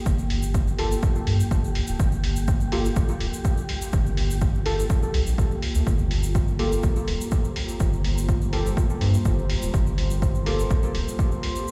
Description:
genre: dub techno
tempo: 124 BPM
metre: 4/4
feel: swing 53% on 16ths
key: G minor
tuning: A4 = 440 Hz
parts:
  - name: deep dark ambient pad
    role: sustained chords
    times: 0.0-11.7 s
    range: Bb3 to C5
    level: -36 LUFS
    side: equal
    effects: chorus, built-in reverb, sidechain pumping
  - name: wind-like tuned noise texture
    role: texture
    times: 0.0-11.7 s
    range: G3 to G4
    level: -39 LUFS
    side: equal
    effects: built-in reverb, sidechain pumping
  - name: round analog bass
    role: bass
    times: 0.1-11.0 s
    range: D1 to G2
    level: -26 LUFS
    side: equal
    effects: tube saturation, sidechain pumping
  - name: electronic kick drum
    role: drums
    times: 0.1-11.3 s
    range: none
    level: -25 LUFS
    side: equal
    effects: none
  - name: egg shaker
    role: percussion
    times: 0.1-11.7 s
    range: none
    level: -42 LUFS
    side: equal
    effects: none
  - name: electronic hi-hat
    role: drums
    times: 0.3-11.5 s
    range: none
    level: -38 LUFS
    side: equal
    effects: none
  - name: deep mellow chord stab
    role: stabs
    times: 0.8-10.6 s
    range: Bb3 to A4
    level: -34 LUFS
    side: equal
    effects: chorus, phaser, sidechain pumping, dub echo
room: light reverb, digital ambience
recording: played on a big sound system in a bare room, large studio reverb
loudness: -24 LUFS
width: mono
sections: 0.0-11.7 A section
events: none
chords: 0.0 Gm9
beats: | 0.06 0.54 1.03 1.51 | 2.00 2.48 2.96 3.45 | 3.93 4.42 4.90 5.38 | 5.87 6.35 6.83 7.32 | 7.80 8.29 8.77 9.25 | 9.74 10.22 10.71 11.19 | 11.67

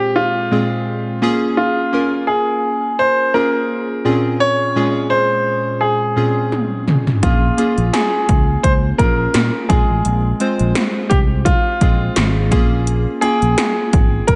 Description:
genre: 1980s-style pop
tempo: 85 BPM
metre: 4/4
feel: swing 55% on 16ths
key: Bb dorian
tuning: A4 = 443 Hz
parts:
  - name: clear baby grand piano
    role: melody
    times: 0.0-14.4 s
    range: F4 to Db5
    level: -21 LUFS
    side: equal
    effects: none
  - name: warm analog keys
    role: accompaniment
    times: 0.0-14.4 s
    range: Bb2 to G5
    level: -22 LUFS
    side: equal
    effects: chorus
  - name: 80s electronic pad drums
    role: drums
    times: 6.5-14.4 s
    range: hi-hat, kick drum, snare drum, toms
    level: -19 LUFS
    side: equal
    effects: gated reverb on snare and toms, gated reverb
  - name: fingered electric bass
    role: bass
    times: 7.2-14.4 s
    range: Ab1 to Bb2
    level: -20 LUFS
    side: equal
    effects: none
room: moderate lush hall reverb, RT60 2.5 s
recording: nothing above 11.0 kHz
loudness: -16 LUFS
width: mono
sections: 0.0-14.4 A section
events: drum fill 6.5-7.2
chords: 0.0 Fm/Bb; 1.2 Bbm7; 4.1 Dbmaj7/Bb; 7.2 Bbm7; 9.7 Fm; 12.5 Bbm7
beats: 0.17 0.87 | 1.58 2.29 2.99 3.70 | 4.40 5.11 5.82 6.52 | 7.23 7.93 8.64 9.35 | 10.05 10.76 11.46 12.17 | 12.87 13.58 14.29

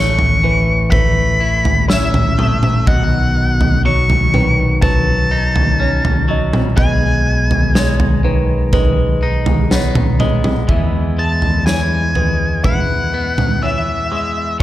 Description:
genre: post-rock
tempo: 61 BPM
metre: 4/4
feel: straight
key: E major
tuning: A4 = 440 Hz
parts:
  - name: octave-fuzz lead guitar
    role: melody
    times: 0.0-14.6 s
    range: E5 to C#6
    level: -19 LUFS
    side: left 1 dB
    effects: distortion
  - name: pedal steel guitar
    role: sustained chords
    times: 0.0-14.6 s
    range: D#3 to C#5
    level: -29 LUFS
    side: right 1 dB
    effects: none
  - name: clean electric guitar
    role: arpeggios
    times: 0.0-14.6 s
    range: A2 to E4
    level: -23 LUFS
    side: left 3 dB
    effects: analog delay
  - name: felt-muted upright piano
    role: arpeggios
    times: 0.0-14.6 s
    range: B4 to D#6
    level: -25 LUFS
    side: right 4 dB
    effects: analog delay
  - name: modern bright fingered electric bass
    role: bass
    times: 0.0-14.6 s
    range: A1 to E2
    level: -18 LUFS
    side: equal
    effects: none
  - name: big rock drum kit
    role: drums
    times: 0.2-14.6 s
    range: kick drum, snare drum, toms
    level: -16 LUFS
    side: equal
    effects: none
room: small room ambience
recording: none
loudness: -12 LUFS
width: side -14 dB against mid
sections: 0.0-10.7 A section; 10.7-14.6 B section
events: none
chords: 0.0 A; 2.9 Badd9; 6.8 G#m/B; 10.7 E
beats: 0.92 1.90 | 2.87 3.85 4.83 5.80 | 6.78 7.75 8.73 9.71 | 10.69 11.66 12.64 13.62 | 14.60

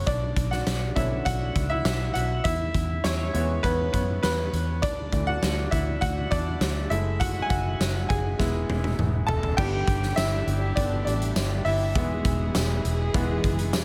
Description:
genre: piano-driven pop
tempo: 101 BPM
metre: 4/4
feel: straight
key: unclear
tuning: A4 = 436 Hz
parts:
  - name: bright upright piano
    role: accompaniment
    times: 0.0-13.8 s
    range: D3 to A5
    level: -30 LUFS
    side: equal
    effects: none
  - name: vintage muted fingered electric bass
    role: bass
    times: 0.1-13.8 s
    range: E1 to F#2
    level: -30 LUFS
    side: equal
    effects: none
  - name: huge arena drum kit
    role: drums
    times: 0.1-13.8 s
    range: crash cymbal, hi-hat, kick drum, snare drum, toms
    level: -31 LUFS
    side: equal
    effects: none
  - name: warm studio string section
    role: sustained chords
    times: 9.6-13.8 s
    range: B2 to G#4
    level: -35 LUFS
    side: equal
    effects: none
  - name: tambourine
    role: percussion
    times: 10.2-13.8 s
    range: none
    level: -40 LUFS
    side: equal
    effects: none
room: light reverb, studio reverb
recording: none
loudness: -26 LUFS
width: mono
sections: 0.0-9.6 A section; 9.6-13.8 B section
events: upright piano solo 0.0-9.6, 9.6-13.8; drum fill 8.4-9.6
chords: 0.1 Bmadd9; 2.5 E; 4.8 Dsus2; 6.9 F#m7; 8.4 E; 9.6 G; 12.0 E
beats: | 0.07 0.67 1.26 1.86 | 2.45 3.05 3.64 4.24 | 4.83 5.42 6.02 6.61 | 7.21 7.80 8.39 8.99 | 9.58 10.18 10.77 11.36 | 11.96 12.55 13.14 13.74

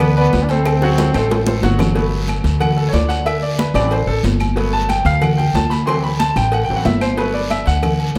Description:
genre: latin, salsa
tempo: 184 BPM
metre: 4/4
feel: straight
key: G major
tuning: A4 = 440 Hz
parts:
  - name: bright trombone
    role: melody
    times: 0.0-1.6 s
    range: B3 to D4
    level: -23 LUFS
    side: equal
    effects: none
  - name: bright grand piano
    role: accompaniment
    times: 0.0-8.2 s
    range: E3 to C6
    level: -22 LUFS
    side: equal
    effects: none
  - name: upright bass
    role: bass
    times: 0.0-8.2 s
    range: G1 to D2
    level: -20 LUFS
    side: equal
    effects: none
  - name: agogo bells and timbales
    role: percussion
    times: 0.0-8.2 s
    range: none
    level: -28 LUFS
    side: equal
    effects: none
  - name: claves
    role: percussion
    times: 0.0-8.0 s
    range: none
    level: -38 LUFS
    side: equal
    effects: none
  - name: congas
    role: percussion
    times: 0.0-8.2 s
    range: none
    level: -26 LUFS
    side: equal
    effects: none
  - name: cowbell and bongos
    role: percussion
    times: 0.0-8.2 s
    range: none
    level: -29 LUFS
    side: equal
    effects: none
  - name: guiro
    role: percussion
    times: 0.0-8.2 s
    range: none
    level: -35 LUFS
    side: equal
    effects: none
room: moderate large studio reverb, RT60 1.4 s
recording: none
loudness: -17 LUFS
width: mono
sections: 0.0-2.0 A section; 2.0-8.2 B section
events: drum fill 0.7-2.0; grand piano solo 2.0-8.2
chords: 0.0 G (rootless); 0.7 D7; 2.0 Gmaj7; 3.3 D7; 4.6 Gmaj7; 5.9 D7; 7.2 Gmaj7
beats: 0.00 0.33 | 0.65 0.98 1.30 1.63 | 1.96 2.28 2.61 2.94 | 3.26 3.59 3.92 4.24 | 4.57 4.89 5.22 5.55 | 5.87 6.20 6.53 6.85 | 7.18 7.50 7.83 8.16

